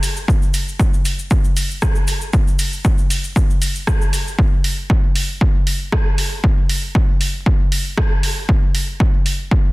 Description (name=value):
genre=techno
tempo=117 BPM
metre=4/4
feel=swing 53% on 16ths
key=none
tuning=none
part: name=punchy analog drum machine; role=drums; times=0.0-9.4 s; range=hi-hat, rim click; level=-24 LUFS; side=right 1 dB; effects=overdrive
part: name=cabasa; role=percussion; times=0.0-4.4 s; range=none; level=-30 LUFS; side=left 2 dB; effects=none
part: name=electronic kick drum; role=drums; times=0.3-9.6 s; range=none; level=-16 LUFS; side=equal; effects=overdrive
room=little or no reverb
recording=dense, heavily limited modern master, vinyl crackle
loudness=-15 LUFS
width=side -21 dB against mid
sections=0.0-4.4 A section; 4.4-9.7 A section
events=none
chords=none